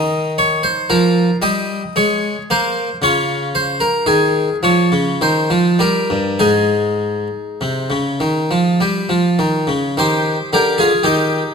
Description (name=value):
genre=classical, baroque-style suite movement for harpsichord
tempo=49-58 BPM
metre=3/4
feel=rubato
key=Ab major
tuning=A4 = 443 Hz
part: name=harpsichord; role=solo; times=0.0-11.5 s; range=G2 to Eb5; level=-14 LUFS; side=equal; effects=none
room=moderate concert hall reverb, RT60 1.9 s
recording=close, detailed microphones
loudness=-14 LUFS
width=side -6 dB against mid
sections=0.0-10.0 A section; 10.0-11.5 A section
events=none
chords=0.0 Eb; 2.0 Ab; 3.0 Db; 5.2 Eb; 6.4 Ab; 10.0 Eb